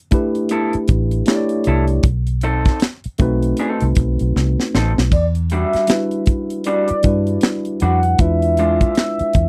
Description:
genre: R&B, neo-soul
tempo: 78 BPM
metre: 4/4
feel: swing 61% on 16ths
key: E minor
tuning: A4 = 442 Hz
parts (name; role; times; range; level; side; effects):
- tine electric piano; accompaniment; 0.1-9.5 s; G3 to D5; -23 LUFS; equal; none
- tight funk drum kit; drums; 0.1-9.5 s; handclaps, hi-hat, kick drum, snare drum, splash cymbal; -19 LUFS; equal; none
- electric guitar through a small old amp; second line; 0.5-8.9 s; G3 to A4; -24 LUFS; equal; vibrato effect
- vintage muted fingered electric bass; bass; 0.7-9.5 s; A1 to G2; -20 LUFS; equal; none
- mellow horn-like synth lead; melody; 5.1-9.5 s; D5 to F#5; -22 LUFS; equal; chorus
room: little or no reverb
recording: dry, close 1970s-style studio recording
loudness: -17 LUFS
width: mono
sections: 0.0-9.5 A section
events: drum fill 4.3-5.1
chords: 0.0 G69; 2.0 B7b9; 5.1 Em9; 8.2 E7b9

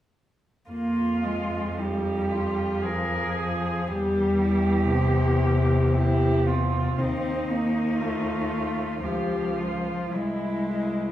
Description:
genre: classical, lyrical piece for cello ensemble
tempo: 57 BPM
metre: 3/4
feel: uneven beats, rubato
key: F minor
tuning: A4 = 441 Hz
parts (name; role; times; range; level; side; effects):
- muted cello; melody; 0.7-11.1 s; C4 to Bb4; -31 LUFS; left 5 dB; none
- muted cello; second line; 0.7-11.1 s; Eb4 to Ab4; -30 LUFS; right 4 dB; none
- muted cello; accompaniment; 0.7-11.1 s; C3 to C4; -26 LUFS; left 1 dB; none
- muted cello; bass; 0.7-11.1 s; C2 to F2; -29 LUFS; right 1 dB; none
room: wet recital hall reverb, RT60 1.4 s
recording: heard from further back in the room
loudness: -23 LUFS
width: side -12 dB against mid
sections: 0.7-11.1 A section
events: none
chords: 0.7 Fm; 3.9 C/E; 7.0 F7/Eb; 9.0 Db; 10.1 C

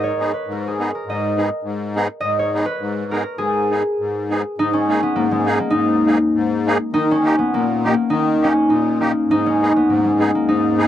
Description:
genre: alpine folk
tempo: 102 BPM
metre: 2/4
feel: swing 55% on 8ths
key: G# minor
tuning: A4 = 438 Hz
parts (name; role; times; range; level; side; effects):
- concert harp; melody; 0.0-10.9 s; G#3 to D#5; -17 LUFS; equal; none
- musette accordion; accompaniment; 0.0-10.9 s; G#2 to G#4; -21 LUFS; left 2 dB; none
room: light reverb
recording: dry, close 1970s-style studio recording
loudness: -16 LUFS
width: side -11 dB against mid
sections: 0.0-4.6 A section; 4.6-10.9 A section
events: none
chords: 0.0 G#m; 4.6 G#sus2; 6.9 D#; 9.3 G#m

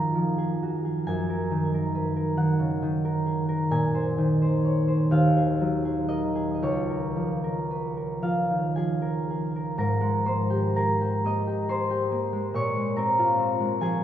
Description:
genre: classical, solo harp piece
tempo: 36-47 BPM (dotted quarters)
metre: 6/8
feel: rubato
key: Db major, Ab major from 9.8 s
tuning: A4 = 440 Hz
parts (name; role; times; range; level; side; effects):
- concert harp; solo; 0.0-14.0 s; Db2 to Eb6; -23 LUFS; equal; none
room: wet cathedral reverb, RT60 5.9 s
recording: recorded in a church or concert hall, nothing above 7.4 kHz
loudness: -23 LUFS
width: side -10 dB against mid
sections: 0.0-9.8 A section; 9.8-14.0 B section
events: none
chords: 0.0 Gbmaj9; 1.1 Ebm7/Gb; 3.7 Bbm11; 5.1 Ebmadd9; 6.6 Db6; 9.8 Abmaj9; 12.6 Bbm9

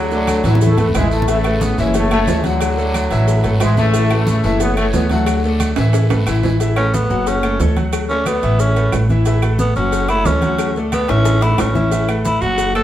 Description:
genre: latin, salsa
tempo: 180 BPM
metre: 4/4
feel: straight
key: A major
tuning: A4 = 442 Hz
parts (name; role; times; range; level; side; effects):
- brilliant trombone section; melody; 0.0-5.7 s; A2 to C#4; -20 LUFS; left 1 dB; plate reverb
- bright concert grand piano; accompaniment; 0.0-12.8 s; E3 to F#5; -20 LUFS; left 2 dB; none
- upright bass; bass; 0.0-12.8 s; F#1 to D2; -17 LUFS; right 1 dB; none
- clear trombone section; second line; 0.1-0.9 s; D3 to A3; -22 LUFS; equal; none
- congas; percussion; 0.1-12.8 s; none; -25 LUFS; equal; none
- maracas; percussion; 0.1-12.8 s; none; -35 LUFS; right 5 dB; none
- claves; percussion; 0.3-12.8 s; none; -34 LUFS; equal; none
- cowbell and bongos; percussion; 0.3-12.7 s; none; -27 LUFS; left 6 dB; none
- guiro; percussion; 0.3-6.6 s; none; -34 LUFS; right 2 dB; none
- timbales and agogo bells; percussion; 0.3-12.8 s; none; -26 LUFS; right 4 dB; none
- growling tenor saxophone; melody; 6.8-12.8 s; B3 to A4; -19 LUFS; right 1 dB; plate reverb
room: wet studio reverb, RT60 0.9 s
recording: heard from further back in the room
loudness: -13 LUFS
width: side -12 dB against mid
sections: 0.0-6.6 A section; 6.6-12.8 B section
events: drum fill 0.5-1.3, 5.8-6.6, 11.1-11.9; tenor saxophone solo 6.6-12.8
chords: 0.0 D; 0.6 Aadd9; 1.9 F#m7; 2.6 D; 3.3 Aadd9; 4.6 F#m7; 5.3 D; 5.9 Asus2; 7.3 F#m; 7.9 D; 8.6 Aadd9; 9.9 F#m; 10.6 D; 11.3 Aadd9

